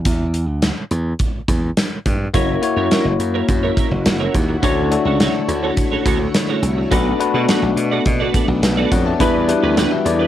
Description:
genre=1980s-style pop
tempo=105 BPM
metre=4/4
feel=straight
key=D major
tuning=A4 = 440 Hz
part: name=slap bass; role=bass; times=0.1-10.3 s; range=F#1 to B2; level=-20 LUFS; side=right 1 dB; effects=none
part: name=gated 80s drum kit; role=drums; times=0.1-10.2 s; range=hi-hat, kick drum, snare drum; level=-19 LUFS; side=equal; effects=none
part: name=bell-like tine electric piano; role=accompaniment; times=2.3-10.3 s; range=G3 to A5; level=-20 LUFS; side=left 6 dB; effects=cassette tape
part: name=string machine, violins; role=sustained chords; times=2.3-10.3 s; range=D3 to C#5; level=-25 LUFS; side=right 1 dB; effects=ensemble chorus, cassette tape
part: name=twelve-string electric guitar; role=riff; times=2.3-10.3 s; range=B3 to D5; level=-23 LUFS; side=right 7 dB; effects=ensemble chorus, cassette tape
room=moderate booth ambience, RT60 0.2 s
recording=home recording on cassette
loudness=-15 LUFS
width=side -12 dB against mid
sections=0.0-10.3 A section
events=none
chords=0.1 N.C.; 2.3 F#7; 4.6 Dmaj7; 6.9 Bm7; 9.2 Em7

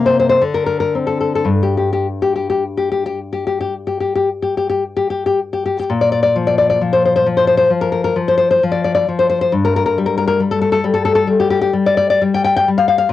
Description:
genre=romantic piece for solo classical guitar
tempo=53-72 BPM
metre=4/4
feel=rubato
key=Bb major from 5.9 s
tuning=A4 = 440 Hz
part: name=nylon-string guitar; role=solo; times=0.0-13.1 s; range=G2 to G5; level=-13 LUFS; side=left 3 dB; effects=cassette tape
room=moderate booth ambience, RT60 0.2 s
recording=home recording on cassette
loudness=-14 LUFS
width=side -13 dB against mid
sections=0.0-5.9 A section; 5.9-13.1 B section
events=none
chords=0.4 Bbmaj9/D; 1.5 N.C.; 5.9 Bb5; 9.5 N.C.

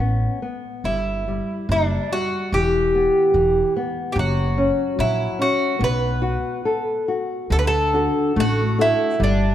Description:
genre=fado-style ballad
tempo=72 BPM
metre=2/4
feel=rubato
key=B minor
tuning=A4 = 439 Hz
part: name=Irish bouzouki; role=melody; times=0.0-9.5 s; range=C#4 to B4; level=-21 LUFS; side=right 1 dB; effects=none
part: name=nylon-string guitar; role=accompaniment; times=0.0-9.5 s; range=D3 to A4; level=-23 LUFS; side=left 2 dB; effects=none
part: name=upright bass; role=bass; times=0.0-9.5 s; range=E1 to D2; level=-23 LUFS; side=right 1 dB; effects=none
room=moderate concert hall reverb, RT60 1.8 s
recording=none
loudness=-18 LUFS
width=side -11 dB against mid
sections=0.0-7.5 A section; 7.5-9.5 B section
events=break 6.6-7.5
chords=0.0 Bsus2; 0.8 Em9; 2.5 Em; 4.2 F#; 5.8 B5; 7.5 D

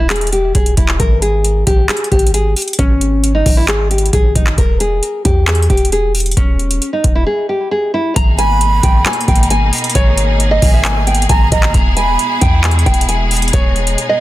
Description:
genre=hip hop, trap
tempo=134 BPM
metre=4/4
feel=half-time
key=G# harmonic minor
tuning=A4 = 437 Hz
part: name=nylon-string guitar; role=melody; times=0.0-14.2 s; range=C#4 to A#5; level=-17 LUFS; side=left 1 dB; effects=low-pass filter, tape echo
part: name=warm 808-style bass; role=bass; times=0.0-14.0 s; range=E1 to E2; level=-15 LUFS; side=equal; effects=none
part: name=booming analog drum machine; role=drums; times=0.1-14.1 s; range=handclaps, hi-hat, kick drum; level=-14 LUFS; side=equal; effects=none
part: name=clear symphonic string section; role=sustained chords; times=8.2-14.2 s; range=B2 to G#4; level=-20 LUFS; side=left 1 dB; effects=none
part: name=breathy jazz flute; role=second line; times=8.4-12.6 s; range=G#5 to B5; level=-20 LUFS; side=right 6 dB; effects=tape echo
room=small room ambience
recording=dense, heavily limited modern master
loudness=-11 LUFS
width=side -16 dB against mid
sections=0.0-8.2 A section; 8.2-14.2 B section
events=break 7.3-8.2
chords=0.0 E; 1.0 N.C.; 4.6 E; 8.2 G#madd9; 11.7 E

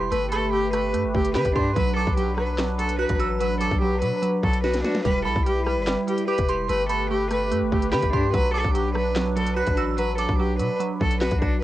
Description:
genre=hip hop, drill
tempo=146 BPM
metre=4/4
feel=half-time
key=B minor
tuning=A4 = 441 Hz
part: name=glassy synth bell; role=second line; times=0.0-11.6 s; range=B5 to F#6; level=-32 LUFS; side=right 7 dB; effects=chorus, tape echo
part: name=glassy wavetable pluck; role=accompaniment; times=0.0-11.6 s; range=F#3 to G4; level=-28 LUFS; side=right 3 dB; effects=chorus
part: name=hollow soft pad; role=sustained chords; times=0.0-11.6 s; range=F#3 to B4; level=-30 LUFS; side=left 1 dB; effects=chorus
part: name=long sustained 808-style bass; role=bass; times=0.0-11.6 s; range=E1 to D3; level=-28 LUFS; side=left 1 dB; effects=none
part: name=clear cello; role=melody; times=0.1-11.6 s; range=D4 to B4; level=-26 LUFS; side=left 1 dB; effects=cassette tape
part: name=drill drum kit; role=drums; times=0.1-11.5 s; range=handclaps, hi-hat, kick drum, rim click, snare drum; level=-26 LUFS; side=left 1 dB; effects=vintage 12-bit sampler grit, cassette tape
room=light reverb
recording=home recording on cassette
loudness=-21 LUFS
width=side -14 dB against mid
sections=0.0-11.6 A section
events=drum fill 4.6-5.0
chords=0.1 Gadd9; 1.8 Bm; 5.0 Em; 6.7 Gadd9; 8.3 Bm

